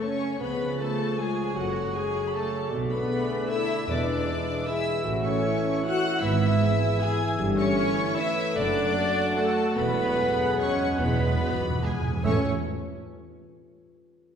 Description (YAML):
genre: classical, orchestral ballroom waltz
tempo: 137-169 BPM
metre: 3/4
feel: rubato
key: A major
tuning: A4 = 441 Hz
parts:
  - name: warm chamber violin section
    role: melody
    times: 0.0-12.5 s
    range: F#5 to G#6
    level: -35 LUFS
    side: left 4 dB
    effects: none
  - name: large flute ensemble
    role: second line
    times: 0.0-12.5 s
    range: F#4 to G#5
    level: -34 LUFS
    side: left 1 dB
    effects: none
  - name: mellow cor anglais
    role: second line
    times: 0.0-12.4 s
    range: C#5 to F#5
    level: -34 LUFS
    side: right 2 dB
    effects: none
  - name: warm chamber violin section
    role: second line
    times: 0.0-12.5 s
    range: F#4 to G#5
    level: -33 LUFS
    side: equal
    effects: none
  - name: clear chamber viola section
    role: accompaniment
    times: 0.0-12.5 s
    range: F#3 to G#4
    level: -31 LUFS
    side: equal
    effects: none
  - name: mellow bassoon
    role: accompaniment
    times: 0.0-12.4 s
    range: E#3 to B3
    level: -35 LUFS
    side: equal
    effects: none
  - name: dark French horn section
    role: sustained chords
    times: 0.0-12.4 s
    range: A3 to B4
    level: -32 LUFS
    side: left 4 dB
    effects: none
  - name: dark trombone section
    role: sustained chords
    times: 0.0-12.4 s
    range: A2 to B3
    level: -35 LUFS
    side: right 1 dB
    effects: none
  - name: warm chamber cello section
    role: bass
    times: 0.4-12.5 s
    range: E2 to C#3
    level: -33 LUFS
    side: right 2 dB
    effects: none
  - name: warm chamber double bass section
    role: bass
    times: 0.4-12.5 s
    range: E1 to C#2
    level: -32 LUFS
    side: right 3 dB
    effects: none
  - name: timpani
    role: percussion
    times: 3.9-4.4, 9.8-12.4 s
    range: E2 to A2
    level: -32 LUFS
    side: right 1 dB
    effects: none
room: wet scoring stage reverb, RT60 1.9 s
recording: heard from further back in the room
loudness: -23 LUFS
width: side -7 dB against mid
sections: 0.0-12.2 A section; 12.2-13.5 B section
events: timpani fill 9.8-12.2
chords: 0.4 C#7; 1.6 F#m; 2.7 Bm7; 3.9 E7; 5.0 A; 6.2 E/G#; 7.4 A7/G; 8.6 D/F#; 9.8 Eadd9; 12.2 A5